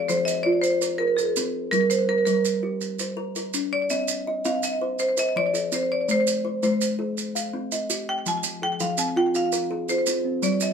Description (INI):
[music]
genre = southern african traditional, mbira-style interlocking cycle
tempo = 110 BPM (dotted quarters)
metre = 12/8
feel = straight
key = F equiheptatonic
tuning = A4 = 441 Hz
[part]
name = marimba with medium hard mallets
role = melody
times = 0.0-10.7 s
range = Ab4+43c to Ab5+43c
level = -24 LUFS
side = equal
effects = slapback echo
[part]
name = kalimba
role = arpeggios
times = 0.0-10.7 s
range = F3 to F5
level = -27 LUFS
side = equal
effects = none
[part]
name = maracas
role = percussion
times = 0.1-10.7 s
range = none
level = -29 LUFS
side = right 6 dB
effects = none
[part]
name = kalimba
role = arpeggios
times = 8.4-10.7 s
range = F3 to D5-43c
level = -31 LUFS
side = right 4 dB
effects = none
[sound]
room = moderate studio ambience, RT60 0.5 s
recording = band playing live in one room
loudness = -22 LUFS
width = side -7 dB against mid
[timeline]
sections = 0.0-10.7 A section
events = none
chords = 0.0 Fm; 1.7 Gm; 3.9 Cm; 5.0 Fm; 6.1 Ab; 7.2 Cm; 8.2 Fm